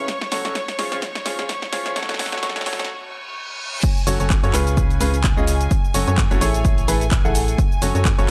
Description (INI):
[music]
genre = piano house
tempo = 128 BPM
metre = 4/4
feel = swing 56% on 16ths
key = F# minor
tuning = A4 = 439 Hz
[part]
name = clear studio string section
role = sustained chords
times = 0.0-8.3 s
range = C#5 to C#6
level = -33 LUFS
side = equal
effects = sidechain pumping
[part]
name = clear baby grand piano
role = riff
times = 0.0-8.3 s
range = A2 to F#5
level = -27 LUFS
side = equal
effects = sidechain pumping, analog delay
[part]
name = organ-like FM bass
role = bass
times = 0.0-8.3 s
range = F#1 to F#2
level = -24 LUFS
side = equal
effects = sidechain pumping
[part]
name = riser and reverse cymbal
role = sound effects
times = 1.7-3.8 s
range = none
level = -36 LUFS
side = equal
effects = none
[part]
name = house drum kit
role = drums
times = 0.1-8.3 s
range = crash cymbal, handclaps, hi-hat, shaker, snare drum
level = -29 LUFS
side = equal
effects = none
[part]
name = electronic kick drum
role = drums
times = 3.8-8.2 s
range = none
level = -22 LUFS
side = equal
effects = none
[sound]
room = digital ambience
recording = dry, gritty hardware recording, high-pass filter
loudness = -20 LUFS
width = mono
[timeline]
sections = 0.0-3.8 A section; 3.8-8.3 B section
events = build-up 0.0-3.8; drum fill 0.0-2.9; filter sweep 0.0-3.8; break 2.9-3.8; reverse cymbal 2.9-3.8; drop 3.8-8.3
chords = 0.1 F#m; 0.8 C#; 2.0 F#m; 2.7 A; 3.8 F#m; 4.5 C#7; 5.7 F#m; 6.4 Amaj7; 7.6 F#m